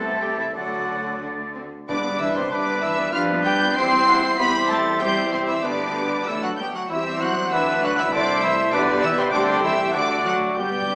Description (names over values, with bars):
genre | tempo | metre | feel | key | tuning
quick classical-period movement for symphony orchestra | 89-101 BPM | 2/4 | rubato | G major | A4 = 439 Hz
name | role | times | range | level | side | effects
dark cor anglais | second line | 0.0-10.9 s | C4 to E5 | -31 LUFS | equal | none
mellow clarinet | second line | 0.0-10.9 s | A4 to G5 | -31 LUFS | equal | none
mellow hollow small flute group | second line | 0.0-10.9 s | C5 to A6 | -30 LUFS | equal | none
rich chamber violin section | second line | 0.0-10.9 s | C4 to C6 | -34 LUFS | equal | none
rich chamber viola section | accompaniment | 0.0-10.9 s | A3 to D5 | -32 LUFS | equal | none
mellow French horn section | sustained chords | 0.0-10.9 s | E3 to G4 | -32 LUFS | equal | none
warm trumpet | stabs | 0.0-10.9 s | E4 to D5 | -28 LUFS | equal | none
clear chamber double bass section | bass | 0.0-10.9 s | G1 to G2 | -39 LUFS | equal | none
rich symphonic cello section | bass | 0.0-10.9 s | C3 to C4 | -33 LUFS | equal | none
rich symphonic violin section | melody | 0.2-10.9 s | E5 to C7 | -31 LUFS | equal | none
timpani | percussion | 1.9-2.8, 10.6-10.9 s | G2 | -39 LUFS | equal | none
room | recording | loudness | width
wet recital hall reverb, RT60 1.4 s | small speaker sound | -21 LUFS | mono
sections
0.0-1.9 A section; 1.9-10.9 B section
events
timpani fill 10.6-10.9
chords
0.0 Am/C; 0.6 D; 1.9 G; 3.1 G7/F; 3.8 C/E; 4.4 Am7/E; 5.6 G/D; 6.3 D; 6.9 C/E; 7.5 Bm/D; 8.1 Am/C; 8.7 G/B; 9.3 Am7/C; 9.9 D